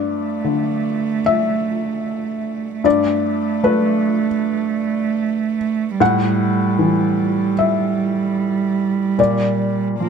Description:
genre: neoclassical piano and strings.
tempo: 76 BPM.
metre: 4/4.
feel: rubato.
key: G major.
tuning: A4 = 440 Hz.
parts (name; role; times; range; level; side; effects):
warm cello; second line; 0.0-10.1 s; G3 to Bb3; -19 LUFS; right 6 dB; none.
felt-muted upright piano; accompaniment; 0.0-10.1 s; G2 to F#5; -19 LUFS; left 4 dB; none.
room: light reverb.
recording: close, detailed microphones.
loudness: -16 LUFS.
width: side -6 dB against mid.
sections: 0.0-10.1 A section.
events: none.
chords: 0.0 Gadd9; 6.0 A5; 9.2 Bb6.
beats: 0.46 1.26 2.05 | 2.85 3.64 4.42 5.21 | 6.00 6.78 7.57 8.37 | 9.18 9.99.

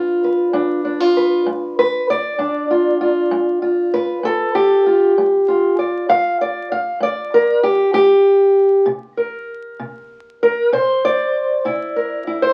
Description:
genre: acoustic country blues, solo or duo.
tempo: 65 BPM (dotted quarters).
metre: 12/8.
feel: straight.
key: G mixolydian.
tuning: A4 = 442 Hz.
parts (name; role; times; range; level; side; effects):
fingerpicked steel-string acoustic guitar; solo; 0.0-12.5 s; G2 to F5; -17 LUFS; equal; none.
room: wet club reverb, RT60 0.7 s.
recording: very old 78 rpm record, vinyl crackle.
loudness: -17 LUFS.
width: mono.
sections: 0.0-12.5 A section.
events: none.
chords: 0.0 G7; 8.9 C7.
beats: 0.54 | 1.46 2.39 3.31 4.24 | 5.16 6.09 7.01 7.94 | 8.86 9.79 10.71 11.64.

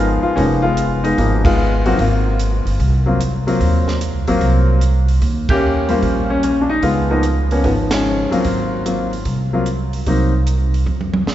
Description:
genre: jazz piano trio.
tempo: 148 BPM.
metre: 4/4.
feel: swing 67% on 8ths.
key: Ab mixolydian.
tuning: A4 = 440 Hz.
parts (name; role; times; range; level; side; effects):
warm baby grand piano; melody; 0.0-10.3 s; Eb3 to C5; -17 LUFS; left 1 dB; none.
upright bass; bass; 0.0-11.3 s; F1 to F2; -17 LUFS; equal; none.
compact cocktail drum kit; drums; 0.4-11.3 s; hi-hat, kick drum, ride cymbal, snare drum, toms; -24 LUFS; right 2 dB; none.
room: wet church reverb, RT60 3.3 s.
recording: recorded in a church or concert hall, nothing above 7.8 kHz.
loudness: -14 LUFS.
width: side -12 dB against mid.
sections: 0.0-11.3 A section.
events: band accent 1.4, 5.4, 7.8; drum fill 10.9-11.3.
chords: 0.0 Db13 (rootless); 2.0 Ab13; 5.2 Eb13; 6.8 Db13; 8.4 Ab13; 10.1 Cm7b5.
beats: | 0.36 0.77 1.17 1.58 | 1.98 2.38 2.79 3.19 | 3.60 4.00 4.41 4.81 | 5.21 5.62 6.02 6.43 | 6.83 7.24 7.64 8.04 | 8.45 8.85 9.26 9.66 | 10.06 10.47 10.87 11.28.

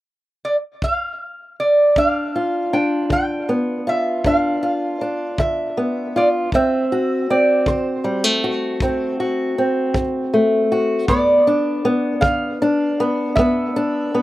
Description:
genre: acoustic country blues, solo or duo.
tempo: 53 BPM (dotted quarters).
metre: 12/8.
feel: straight.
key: G mixolydian.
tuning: A4 = 439 Hz.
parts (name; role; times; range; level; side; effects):
lap resonator guitar; melody; 0.4-14.2 s; C5 to G5; -19 LUFS; right 1 dB; none.
kick drum; drums; 0.8-13.5 s; none; -23 LUFS; equal; none.
fingerpicked old ladder-braced acoustic guitar; accompaniment; 2.0-14.2 s; D2 to F#4; -18 LUFS; left 1 dB; slapback echo.
room: light reverb.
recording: recorded outdoors, with no room sound.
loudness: -16 LUFS.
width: side -16 dB against mid.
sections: 0.0-2.0 A section; 2.0-11.1 B section; 11.1-14.2 C section.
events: none.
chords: 0.0 N.C.; 2.0 G7; 6.5 D7; 11.1 G7.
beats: 0.82 | 1.96 3.10 4.24 5.38 | 6.53 7.67 8.81 9.95 | 11.09 12.23 13.37.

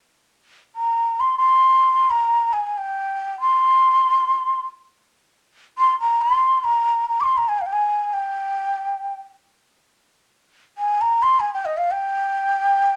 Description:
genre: turkish.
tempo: free time.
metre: none.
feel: none.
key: unclear.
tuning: A4 = 441 Hz.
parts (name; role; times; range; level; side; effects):
breathy mellow ney; solo; 0.8-13.0 s; Eb5 to D6; -20 LUFS; equal; none.
room: light reverb.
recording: none.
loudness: -20 LUFS.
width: mono.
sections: 0.1-13.0 A section.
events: none.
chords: none.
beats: free time.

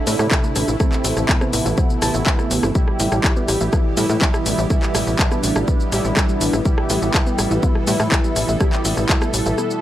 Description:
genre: melodic techno.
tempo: 123 BPM.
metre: 4/4.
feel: straight.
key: unclear.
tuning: A4 = 439 Hz.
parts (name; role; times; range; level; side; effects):
fat analog lead; melody; 0.0-9.8 s; B3 to A4; -26 LUFS; equal; phaser, analog chorus, vintage 12-bit sampler grit, sidechain pumping, tape echo.
evolving wavetable pad; sustained chords; 0.0-9.8 s; C3 to A4; -29 LUFS; left 1 dB; ensemble chorus, built-in reverb, sidechain pumping.
analog synth brass; stabs; 0.0-9.8 s; B2 to E4; -26 LUFS; right 4 dB; chorus, sidechain pumping, tape echo.
deep dark ambient pad; texture; 0.0-9.8 s; E4 to B5; -31 LUFS; equal; chorus, built-in reverb, sidechain pumping.
soft round pluck; arpeggios; 0.1-9.6 s; G3 to A6; -30 LUFS; equal; none.
tight sequencer bass; bass; 0.1-9.5 s; G1 to A2; -21 LUFS; equal; sidechain pumping.
house drum kit; drums; 0.1-9.8 s; handclaps, hi-hat, rim click, shaker; -22 LUFS; equal; overdrive, sidechain pumping on perc, sidechain pumping on hats.
electronic kick drum; drums; 0.3-9.2 s; none; -18 LUFS; equal; none.
room: little or no reverb.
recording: dry, gritty hardware recording.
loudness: -16 LUFS.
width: side -13 dB against mid.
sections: 0.0-9.8 A section.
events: break 9.6.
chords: 0.0 Am; 2.8 Em/A.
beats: 0.31 | 0.80 1.29 1.78 2.26 | 2.75 3.24 3.73 4.21 | 4.70 5.19 5.68 6.17 | 6.65 7.14 7.63 8.12 | 8.61 9.09 9.58.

